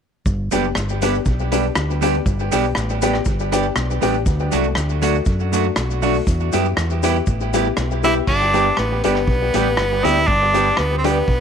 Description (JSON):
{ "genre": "ska", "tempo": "120 BPM", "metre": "4/4", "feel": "straight", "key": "G major", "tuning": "A4 = 440 Hz", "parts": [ { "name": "fingered electric bass", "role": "bass", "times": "0.3-11.4 s", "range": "F#1 to F#2", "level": "-22 LUFS", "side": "equal", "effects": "none" }, { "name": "vintage drum kit", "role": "drums", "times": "0.3-11.4 s", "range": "crash cymbal, hi-hat, kick drum, rim click", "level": "-24 LUFS", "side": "equal", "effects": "none" }, { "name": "cabasa", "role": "percussion", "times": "0.3-8.1 s", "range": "none", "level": "-35 LUFS", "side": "left 12 dB", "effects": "tape echo" }, { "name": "clean electric guitar", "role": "accompaniment", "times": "0.5-11.2 s", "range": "F#3 to G4", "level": "-23 LUFS", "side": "right 11 dB", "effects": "tape echo" }, { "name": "dark upright piano", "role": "stabs", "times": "0.5-11.2 s", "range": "A3 to G4", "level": "-23 LUFS", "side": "left 11 dB", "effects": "tape echo" }, { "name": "edgy tenor saxophone", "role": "melody", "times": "8.0-11.4 s", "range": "B3 to E4", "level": "-18 LUFS", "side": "right 1 dB", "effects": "none" } ], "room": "moderate plate reverb, RT60 1.4 s, small room ambience", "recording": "1960s-style stereo with parts hard left and right", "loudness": "-16 LUFS", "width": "side -7 dB against mid", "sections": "0.3-8.3 A section; 8.3-11.4 B section", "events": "none", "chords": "0.3 G; 4.3 D; 6.3 Em; 8.3 G", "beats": "| 0.26 0.76 1.26 1.76 | 2.26 2.76 3.26 3.76 | 4.26 4.76 5.27 5.77 | 6.27 6.77 7.27 7.77 | 8.27 8.77 9.27 9.78 | 10.28 10.78 11.28" }